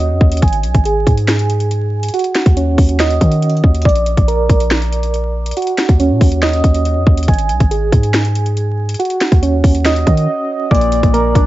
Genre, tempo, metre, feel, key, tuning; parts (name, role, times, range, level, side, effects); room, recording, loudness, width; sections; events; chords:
hip hop, trap; 140 BPM; 4/4; half-time; Eb minor; A4 = 440 Hz
soft electric-piano-like synth keys; arpeggios; 0.0-11.5 s; Db4 to Ab5; -17 LUFS; right 3 dB; chorus, tremolo, low-pass filter, tape echo
warm 808-style bass; bass; 0.0-11.5 s; Ab1 to Eb3; -15 LUFS; equal
trap drum kit; drums; 0.0-11.5 s; hi-hat, kick drum, snare drum; -14 LUFS; equal
dark concert grand piano; accompaniment; 10.7-11.5 s; Bb2 to D4; -17 LUFS; left 4 dB; low-pass filter
little or no reverb; vinyl crackle, nothing above 7.6 kHz; -11 LUFS; side -15 dB against mid
0.0-11.5 A section
filter sweep 0.0-10.7; break 10.3-10.7
0.4 N.C.; 2.1 Ebm7; 3.9 Bb; 5.6 Ebm7; 7.3 N.C.; 9.0 Ebm7; 10.7 Bb